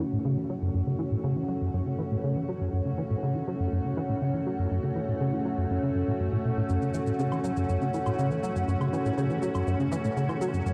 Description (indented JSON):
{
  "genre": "ambient, sequencer-driven space music",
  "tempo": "121 BPM",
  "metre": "4/4",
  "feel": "straight",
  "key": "F# minor",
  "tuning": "A4 = 440 Hz",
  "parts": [
    { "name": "evolving wavetable pad", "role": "sustained chords", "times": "0.0-10.7 s", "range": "A3 to F#4", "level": "-33 LUFS", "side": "equal", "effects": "chorus, built-in reverb, shimmer reverb" },
    { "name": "plucky analog bass", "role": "riff", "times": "0.0-10.7 s", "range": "F#2 to F#3", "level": "-30 LUFS", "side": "equal", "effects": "ensemble chorus, tape echo" },
    { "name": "cabasa and woodblock", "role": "percussion", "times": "6.7-10.7 s", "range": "none", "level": "-48 LUFS", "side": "equal", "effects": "tape echo" }
  ],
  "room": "wet huge ambient reverb, RT60 7.7 s",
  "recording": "worn, warbling old tape, cassette tape, warbly pitch drift",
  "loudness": "-28 LUFS",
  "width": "mono",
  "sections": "0.0-10.7 A section",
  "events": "filter sweep on analog synth bass 0.0-10.7",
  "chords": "0.0 F#m",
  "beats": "0.25 | 0.74 1.24 1.74 2.23 | 2.73 3.22 3.72 4.22 | 4.71 5.21 5.70 6.20 | 6.70 7.19 7.69 8.18 | 8.68 9.18 9.67 10.17 | 10.66"
}